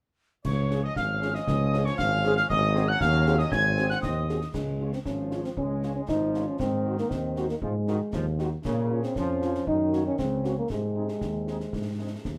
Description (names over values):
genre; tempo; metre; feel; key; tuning
military-style march for wind band; 117 BPM; 2/4; straight; Db major; A4 = 441 Hz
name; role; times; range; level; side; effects
dark trumpet section; melody; 0.4-12.1 s; Ab4 to Ab5; -36 LUFS; equal; none
mellow tuba; bass; 0.4-12.4 s; Ab1 to Bb2; -31 LUFS; equal; none
wooden piccolo; second line; 0.5-4.5 s; Db6 to Ab6; -31 LUFS; equal; none
clear trombone section; sustained chords; 0.5-12.4 s; C3 to Db4; -38 LUFS; equal; none
clash cymbals, concert bass drum and concert snare drum; drums; 0.5-12.4 s; none; -40 LUFS; equal; none
mellow French horn section; accompaniment; 0.7-12.1 s; F3 to Ab4; -34 LUFS; equal; none
mellow euphonium; second line; 4.5-12.4 s; Ab3 to Eb4; -32 LUFS; equal; none
room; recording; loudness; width
light reverb; none; -27 LUFS; mono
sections
0.5-4.5 A section; 4.5-12.4 B section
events
none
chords
0.5 Db; 2.5 Ab7; 4.5 Db; 6.6 Ab7; 8.7 Bbm; 9.7 Gb; 10.7 Ab